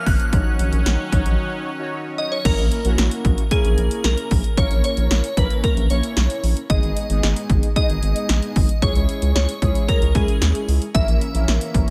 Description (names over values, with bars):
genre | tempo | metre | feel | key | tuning
synth-pop | 113 BPM | 4/4 | straight | unclear | A4 = 439 Hz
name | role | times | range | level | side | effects
shimmering bell with halo | melody | 0.0-11.7 s | G#4 to F#6 | -29 LUFS | equal | ensemble chorus, digital delay, shimmer reverb
analog synth brass | accompaniment | 0.0-11.9 s | G#3 to C#5 | -30 LUFS | equal | chorus, shimmer reverb
sweeping resonant pad | sustained chords | 0.0-2.4, 10.9-11.9 s | D#3 to C#4 | -32 LUFS | equal | chorus, shimmer reverb
round analog bass | bass | 0.1-11.9 s | G#1 to D#2 | -22 LUFS | equal | none
punchy analog drum machine | drums | 0.1-11.9 s | crash cymbal, hi-hat, kick drum, snare drum | -22 LUFS | equal | overdrive
room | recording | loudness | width
digital ambience | none | -20 LUFS | mono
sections
0.0-2.5 A section; 2.5-11.9 B section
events
break 1.4-2.5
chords
0.3 D#m7/A#; 2.5 A#dim; 6.7 G#m; 8.8 C#m; 10.9 A#dim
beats
| 0.33 0.86 1.39 1.92 | 2.45 2.98 3.51 4.04 | 4.58 5.11 5.64 6.17 | 6.70 7.23 7.76 8.29 | 8.82 9.35 9.88 10.42 | 10.95 11.48